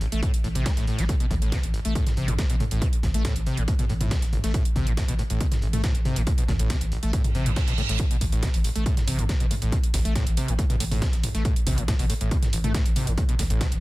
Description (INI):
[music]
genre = driving peak-time techno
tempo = 139 BPM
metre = 4/4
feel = straight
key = A minor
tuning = A4 = 439 Hz
[part]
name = screaming distorted acid line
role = riff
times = 0.0-13.7 s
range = A1 to A3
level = -29 LUFS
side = equal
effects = distortion, analog chorus, sidechain pumping, dub echo
[part]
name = breakbeat sampler-style drum kit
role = drums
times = 0.0-13.7 s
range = hi-hat, snare drum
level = -39 LUFS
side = equal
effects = high-pass filter on snare, sidechain pumping on hats, high-pass filter on hats
[part]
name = saturated sub bass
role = bass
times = 0.1-13.8 s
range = A1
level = -26 LUFS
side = equal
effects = overdrive, sidechain pumping, low-pass filter
[part]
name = techno drum kit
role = drums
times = 0.1-13.8 s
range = hi-hat, toms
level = -32 LUFS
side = right 1 dB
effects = sidechain pumping on hats, sidechain pumping on toms
[part]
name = electronic kick drum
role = drums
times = 0.2-13.7 s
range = none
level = -24 LUFS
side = equal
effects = none
[part]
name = reverse cymbal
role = sound effects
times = 7.3-8.0 s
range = none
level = -31 LUFS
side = right 7 dB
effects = none
[sound]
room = digital ambience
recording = none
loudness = -22 LUFS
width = side -19 dB against mid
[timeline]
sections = 0.0-13.8 A section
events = reverse cymbal 7.3-8.0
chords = 0.0 Am